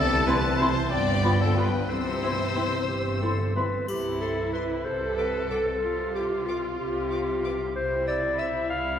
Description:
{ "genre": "cinematic, playful, whimsical film cue", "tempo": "62 BPM (dotted quarters)", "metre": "6/8", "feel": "straight", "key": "C major", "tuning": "A4 = 440 Hz", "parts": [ { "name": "rich chamber violin section", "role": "melody", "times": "0.0-8.5 s", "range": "G5 to E6", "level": "-36 LUFS", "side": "left 4 dB", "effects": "none" }, { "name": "clear oboe", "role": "second line", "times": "0.0-3.5 s", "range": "A4 to D5", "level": "-32 LUFS", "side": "left 2 dB", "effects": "none" }, { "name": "rich chamber violin section", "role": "second line", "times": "0.0-8.5 s", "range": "E4 to D5", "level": "-33 LUFS", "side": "left 3 dB", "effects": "none" }, { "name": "mellow French horn section", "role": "sustained chords", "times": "0.0-3.6 s", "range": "E3 to C4", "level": "-32 LUFS", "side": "left 2 dB", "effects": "none" }, { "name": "rich studio cello section", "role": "bass", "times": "0.0-9.0 s", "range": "G2 to C3", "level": "-32 LUFS", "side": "right 1 dB", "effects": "none" }, { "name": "warm chamber double bass section", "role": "bass", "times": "0.0-9.0 s", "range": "G1 to C2", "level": "-32 LUFS", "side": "right 1 dB", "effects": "none" }, { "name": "mellow flute section", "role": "second line", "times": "0.3-3.6 s", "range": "B5 to C6", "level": "-33 LUFS", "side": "left 1 dB", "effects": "none" }, { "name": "warm clarinet", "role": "second line", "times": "0.3-9.0 s", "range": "E4 to F5", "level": "-29 LUFS", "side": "left 1 dB", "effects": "none" }, { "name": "warm chamber viola section", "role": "accompaniment", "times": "0.3-9.0 s", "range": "B3 to A4", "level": "-32 LUFS", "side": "right 1 dB", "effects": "none" }, { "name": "triangle", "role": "percussion", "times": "3.9-5.1 s", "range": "none", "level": "-46 LUFS", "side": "left 6 dB", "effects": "none" } ], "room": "wet church reverb, RT60 3.0 s", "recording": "recorded in a church or concert hall", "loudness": "-24 LUFS", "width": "side -9 dB against mid", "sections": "0.0-3.9 A section; 3.9-9.0 B section", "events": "none", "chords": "0.0 C; 0.9 G7; 1.9 C; 4.9 D7(no3)/C (rootless); 5.8 N.C.; 7.8 C" }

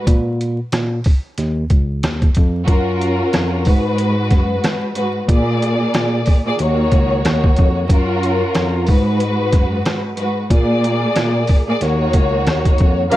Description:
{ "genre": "hip hop, boom-bap hip-hop", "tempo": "92 BPM", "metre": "4/4", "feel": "swing 60% on 16ths", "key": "G# dorian", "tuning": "A4 = 440 Hz", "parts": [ { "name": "warm studio string section", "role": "accompaniment", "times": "0.0-13.2 s", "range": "G#2 to D5", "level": "-18 LUFS", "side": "equal", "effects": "high-pass filter, low-pass filter" }, { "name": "tine electric piano", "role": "bass", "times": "0.1-13.2 s", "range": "C#2 to A#2", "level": "-19 LUFS", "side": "equal", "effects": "medium stereo tremolo" }, { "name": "trip hop sampler-style drum kit", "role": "drums", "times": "0.1-13.2 s", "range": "hi-hat, kick drum, rim click, snare drum", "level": "-15 LUFS", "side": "equal", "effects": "none" }, { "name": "warm studio violin section", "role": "melody", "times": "13.1-13.2 s", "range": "E#5", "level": "-14 LUFS", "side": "right 2 dB", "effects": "high-pass filter, low-pass filter" }, { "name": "tonewheel organ", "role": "sustained chords", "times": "13.1-13.2 s", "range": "C#3 to A#4", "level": "-19 LUFS", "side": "equal", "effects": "overdrive, slow rotary speaker, high-pass filter, low-pass filter" }, { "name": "brilliant trumpet section", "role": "stabs", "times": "13.1-13.2 s", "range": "A#3 to A#4", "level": "-19 LUFS", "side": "left 4 dB", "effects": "high-pass filter, low-pass filter" } ], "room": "light reverb, studio reverb", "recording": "vinyl crackle", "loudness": "-14 LUFS", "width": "side -15 dB against mid", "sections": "0.0-13.1 A section", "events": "break 0.1-2.7", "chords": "0.1 N.C.; 1.4 C#add9; 2.7 F#maj7; 3.7 G#m7; 5.3 A#7; 6.6 D#m7; 7.9 F#maj7; 8.9 G#m7; 10.5 A#7; 11.8 D#m7" }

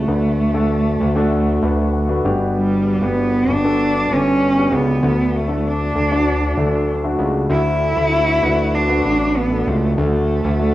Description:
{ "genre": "piano-driven pop", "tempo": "97 BPM", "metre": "4/4", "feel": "straight", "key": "D major", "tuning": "A4 = 440 Hz", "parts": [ { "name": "warm cello", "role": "melody", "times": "0.0-10.7 s", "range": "G3 to E4", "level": "-18 LUFS", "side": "right 1 dB", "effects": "cassette tape" }, { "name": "warm concert grand piano", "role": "accompaniment", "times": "0.0-10.7 s", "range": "G2 to F#5", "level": "-21 LUFS", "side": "left 2 dB", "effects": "none" }, { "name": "fat analog bass", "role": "bass", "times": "0.0-10.7 s", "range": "G1 to D2", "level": "-20 LUFS", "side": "equal", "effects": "none" } ], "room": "light reverb, small room ambience", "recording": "home recording on cassette, studio reverb", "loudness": "-15 LUFS", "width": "side -15 dB against mid", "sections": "0.0-7.5 A section; 7.5-10.7 B section", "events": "grand piano fill 1.3-2.6", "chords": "0.0 D; 2.2 Gmaj7; 5.0 Dadd9; 7.5 D" }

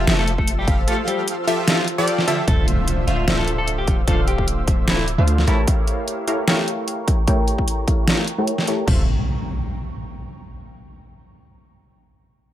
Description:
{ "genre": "future bass", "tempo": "150 BPM", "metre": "4/4", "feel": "swing 54% on 16ths, half-time", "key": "D minor", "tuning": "A4 = 440 Hz", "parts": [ { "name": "clean electric guitar", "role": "melody", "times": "0.0-5.6 s", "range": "D3 to A4", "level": "-27 LUFS", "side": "left 1 dB", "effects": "sidechain pumping, dub echo" }, { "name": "ethereal airy pad", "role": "sustained chords", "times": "0.0-9.1 s", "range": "F4 to E6", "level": "-32 LUFS", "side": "left 1 dB", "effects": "ensemble chorus, built-in reverb, tremolo, sidechain pumping" }, { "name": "wide unison pluck", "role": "arpeggios", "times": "0.0-2.5 s", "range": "D5 to F5", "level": "-28 LUFS", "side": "left 1 dB", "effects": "sidechain pumping" }, { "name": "supersaw stab", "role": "riff", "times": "0.0-9.0 s", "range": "D3 to A5", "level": "-23 LUFS", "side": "equal", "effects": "sidechain pumping, low-pass filter" }, { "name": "warm 808-style bass", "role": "bass", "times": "0.0-5.7, 8.9-9.1 s", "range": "D1 to D2", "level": "-21 LUFS", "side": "equal", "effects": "sidechain pumping" }, { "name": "dubstep drum kit", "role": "drums", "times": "0.1-9.0 s", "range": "crash cymbal, hi-hat, snare drum", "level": "-22 LUFS", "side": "equal", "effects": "overdrive" }, { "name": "electronic kick drum", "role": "drums", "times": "0.4-9.0 s", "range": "none", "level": "-19 LUFS", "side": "equal", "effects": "overdrive" }, { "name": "impact", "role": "sound effects", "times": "2.5-4.1, 8.9-10.5 s", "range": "none", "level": "-26 LUFS", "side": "equal", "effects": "none" } ], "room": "light reverb", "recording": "none", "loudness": "-17 LUFS", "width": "side -12 dB against mid", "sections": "0.0-2.5 A section; 2.5-8.9 B section; 8.9-10.5 C section", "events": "drop 0.0-2.5; impact 2.5-4.1; filter sweep on supersaw synth 2.5-8.9; filter sweep on ambient pad 2.5-8.9", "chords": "0.0 Fmaj7; 2.5 Dm9; 5.5 A7b9b13; 8.9 Dm9" }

